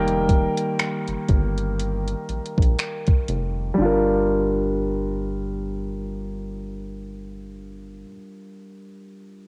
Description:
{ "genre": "contemporary R&B", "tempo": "60 BPM", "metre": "4/4", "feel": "swing 58% on 16ths", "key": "G minor", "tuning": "A4 = 440 Hz", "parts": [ { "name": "clear grand piano", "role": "accompaniment", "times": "0.0-9.5 s", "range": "Eb3 to G5", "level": "-27 LUFS", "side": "equal", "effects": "low-pass filter" }, { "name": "rubbery square bass", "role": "bass", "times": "0.0-8.0 s", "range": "F1 to Bb1", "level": "-30 LUFS", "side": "equal", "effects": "none" }, { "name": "smooth R&B drum kit", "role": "drums", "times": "0.1-3.6 s", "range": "finger snaps, hi-hat, kick drum", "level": "-23 LUFS", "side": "equal", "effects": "cassette tape" } ], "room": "little or no reverb", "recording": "home recording on cassette", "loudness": "-23 LUFS", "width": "mono", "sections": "0.0-3.8 A section; 3.8-7.8 B section", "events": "grand piano solo 0.0-3.8; filter sweep on grand piano 0.0-3.8", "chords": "0.0 F9sus4; 3.8 Gm7" }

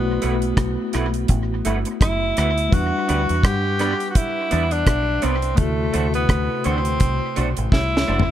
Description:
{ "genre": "lovers rock reggae", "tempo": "84 BPM", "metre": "4/4", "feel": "swing 58% on 16ths", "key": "E minor", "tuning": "A4 = 440 Hz", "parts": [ { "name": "warm tenor saxophone", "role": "melody", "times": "0.0-8.3 s", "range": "A3 to G4", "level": "-24 LUFS", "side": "equal", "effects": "tape echo" }, { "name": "mellow tine electric piano", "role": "accompaniment", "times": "0.0-8.3 s", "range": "C3 to F#5", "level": "-26 LUFS", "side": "left 2 dB", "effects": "medium stereo tremolo, dub echo" }, { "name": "deep dub fingered electric bass", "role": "bass", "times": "0.0-8.3 s", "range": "F#1 to G2", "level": "-23 LUFS", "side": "equal", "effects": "none" }, { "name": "electric guitar through a small old amp", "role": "stabs", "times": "0.2-8.2 s", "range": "A3 to C5", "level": "-28 LUFS", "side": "right 4 dB", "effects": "ensemble chorus" }, { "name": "deep reggae drum kit", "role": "drums", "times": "0.2-8.3 s", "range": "hi-hat, kick drum, rim click, snare drum, toms", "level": "-21 LUFS", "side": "equal", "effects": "dub echo" } ], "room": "light reverb, studio ambience", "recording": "none", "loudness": "-18 LUFS", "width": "side -11 dB against mid", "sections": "0.0-8.3 A section", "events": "drum fill 7.7-8.3", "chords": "0.0 B7sus4; 2.7 Em7; 5.6 D7" }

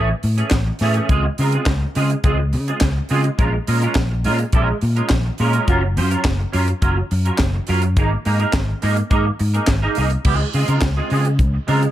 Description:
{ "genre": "disco", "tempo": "105 BPM", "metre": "4/4", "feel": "straight", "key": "Db major", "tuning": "A4 = 440 Hz", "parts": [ { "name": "clean electric guitar", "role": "accompaniment", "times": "0.0-11.9 s", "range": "E3 to C5", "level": "-22 LUFS", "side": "right 3 dB", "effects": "ensemble chorus" }, { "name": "fingered electric bass", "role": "bass", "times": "0.0-11.9 s", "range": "Gb1 to Db3", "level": "-19 LUFS", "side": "equal", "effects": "none" }, { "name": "tight funk drum kit", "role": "drums", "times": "0.2-11.9 s", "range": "crash cymbal, handclaps, hi-hat, kick drum, snare drum", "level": "-21 LUFS", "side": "equal", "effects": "none" } ], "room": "small room ambience", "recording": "none", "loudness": "-16 LUFS", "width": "side -13 dB against mid", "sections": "0.0-10.3 A section; 10.3-11.9 B section", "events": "none", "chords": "0.0 Amaj7; 1.1 Dbmaj7; 3.4 Bbm7; 5.7 Gbmaj7; 8.0 Absus2; 10.3 Dbmaj7" }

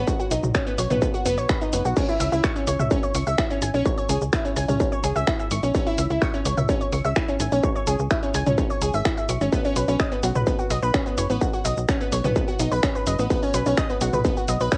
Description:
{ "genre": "melodic techno", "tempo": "127 BPM", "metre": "4/4", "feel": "straight", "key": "C# minor", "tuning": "A4 = 441 Hz", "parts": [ { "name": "tight sequencer bass", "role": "bass", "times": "0.0-14.7 s", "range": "F#1 to C#2", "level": "-27 LUFS", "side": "equal", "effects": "sidechain pumping" }, { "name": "analog pluck", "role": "arpeggios", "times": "0.1-14.8 s", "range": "B3 to C#6", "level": "-27 LUFS", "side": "equal", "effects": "chorus, sidechain pumping, cassette tape, tape echo" }, { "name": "electronic kick drum", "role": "drums", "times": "0.1-14.8 s", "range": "none", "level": "-27 LUFS", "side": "equal", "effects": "distortion, cassette tape" }, { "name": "techno drum kit", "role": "drums", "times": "0.1-14.8 s", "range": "crash cymbal, finger snaps, hi-hat, shaker, toms", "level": "-32 LUFS", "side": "equal", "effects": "cassette tape" } ], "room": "light reverb", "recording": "home recording on cassette", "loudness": "-23 LUFS", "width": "mono", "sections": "0.0-14.8 A section", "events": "none", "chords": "0.0 Badd9; 2.0 C#m; 9.5 Badd9" }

